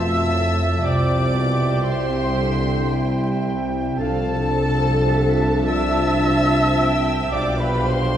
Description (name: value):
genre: classical, slow romantic movement for symphony orchestra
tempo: 48-59 BPM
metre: 3/4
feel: rubato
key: C major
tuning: A4 = 440 Hz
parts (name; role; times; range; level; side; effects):
- warm chamber violin section; melody; 0.0-8.2 s; A5 to E6; -30 LUFS; left 3 dB; none
- bright silver concert flute; second line; 0.0-8.2 s; A5 to E6; -31 LUFS; left 1 dB; none
- clear oboe; second line; 0.0-8.2 s; G5 to A5; -32 LUFS; right 2 dB; none
- dark clarinet; second line; 0.0-8.2 s; D4 to G4; -31 LUFS; equal; none
- warm chamber violin section; second line; 0.0-8.2 s; C5 to A5; -32 LUFS; left 1 dB; none
- dark bassoon; accompaniment; 0.0-8.2 s; A2 to F3; -29 LUFS; right 1 dB; none
- warm chamber viola section; accompaniment; 0.0-8.2 s; A4 to E5; -24 LUFS; right 1 dB; none
- dark French horn section; sustained chords; 0.0-8.2 s; F3 to F4; -27 LUFS; left 1 dB; none
- concert harp; arpeggios; 0.0-8.2 s; B2 to D5; -28 LUFS; left 1 dB; none
- warm chamber cello section; bass; 0.0-8.2 s; F2 to C3; -25 LUFS; right 1 dB; none
- warm chamber double bass section; bass; 0.0-8.2 s; F1 to C2; -26 LUFS; right 1 dB; none
room: wet concert hall reverb, RT60 2.4 s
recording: heard from further back in the room, vinyl crackle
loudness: -17 LUFS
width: side -10 dB against mid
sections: 0.0-8.2 A section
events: none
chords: 0.0 F; 0.9 C; 4.0 Dm7/C; 7.3 G7/B